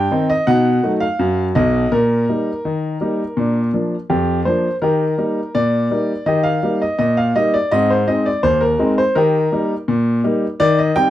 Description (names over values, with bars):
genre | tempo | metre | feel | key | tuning
ragtime piano | 83 BPM | 2/4 | straight | Eb major | A4 = 441 Hz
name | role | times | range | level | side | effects
clear concert grand piano | solo | 0.0-11.1 s | B1 to G5 | -15 LUFS | equal | none
room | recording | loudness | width
light reverb | dry, close 1970s-style studio recording | -15 LUFS | side -13 dB against mid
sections
0.0-11.1 A section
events
none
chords
0.5 B7; 1.9 Eb/Bb; 3.4 Bb; 4.8 Eb; 7.7 Ab; 9.2 Eb